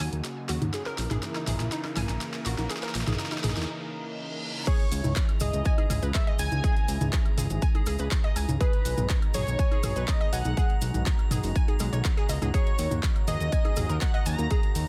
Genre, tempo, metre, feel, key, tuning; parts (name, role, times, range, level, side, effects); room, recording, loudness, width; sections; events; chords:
progressive house; 122 BPM; 4/4; straight; A4 = 440 Hz
lush unison pad; sustained chords; 0.0-14.9 s; B2 to A#4; -40 LUFS; equal; chorus, sidechain pumping
glassy wavetable pluck; arpeggios; 0.0-14.5 s; G#3 to G#6; -40 LUFS; equal; chorus, sidechain pumping, digital delay
fat analog bass; bass; 0.0-14.8 s; F#1 to E2; -31 LUFS; equal; tube saturation, sidechain pumping
big-room dance drum kit; drums; 0.0-14.9 s; crash cymbal, handclaps, hi-hat, snare drum; -38 LUFS; equal; overdrive, sidechain pumping on hats, high-pass filter on hats, high-pass filter on snare, sidechain pumping on cymbals, high-pass filter on cymbals
electronic woodblock, toms and congas; percussion; 0.0-14.5 s; -36 LUFS; equal; overdrive, sidechain pumping on perc, sidechain pumping on toms
riser and reverse cymbal; sound effects; 0.1-4.7 s; -42 LUFS; equal
unison lead; melody; 4.7-14.9 s; B4 to A#5; -36 LUFS; equal; digital delay
electronic kick drum; drums; 4.7-14.6 s; -27 LUFS; equal; overdrive
maracas; percussion; 4.7-14.9 s; -43 LUFS; equal
drifting glass-harmonics texture; texture; 5.1-14.9 s; A#5; -48 LUFS; equal; chorus, built-in reverb, sidechain pumping
digital ambience; -27 LUFS; mono
0.0-4.7 A section; 4.7-14.9 B section
build-up 0.0-4.7; drum fill 0.0-3.7; filter sweep on analog synth pad 0.0-4.7; riser 0.1-3.7; break 3.7-4.7; reverse cymbal 3.7-4.7; drop 4.7-14.9
0.0 D#m7; 0.7 A#dim; 4.7 C#m; 8.6 G#m/B; 12.5 D#m7